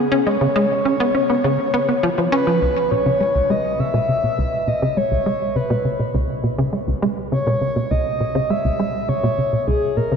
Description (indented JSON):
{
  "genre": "ambient",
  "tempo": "102 BPM",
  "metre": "4/4",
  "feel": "straight",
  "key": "C# dorian",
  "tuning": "A4 = 440 Hz",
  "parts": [
    { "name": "breathy flute-like synth lead", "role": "melody", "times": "0.0-10.2 s", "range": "G#4 to E5", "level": "-21 LUFS", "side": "equal", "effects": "chorus, vintage 12-bit sampler grit, tape echo" },
    { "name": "tight sequencer bass", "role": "riff", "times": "0.0-10.2 s", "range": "C#2 to C#4", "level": "-19 LUFS", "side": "equal", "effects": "analog chorus, tape echo" }
  ],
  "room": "wet cathedral reverb, RT60 6.1 s",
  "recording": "in a vast, echoing space",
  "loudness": "-17 LUFS",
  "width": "side -6 dB against mid",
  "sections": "0.0-2.6 A section; 2.6-10.2 B section",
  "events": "filter sweep on analog synth bass 2.6-10.2",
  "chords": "0.0 C#; 2.6 C#5"
}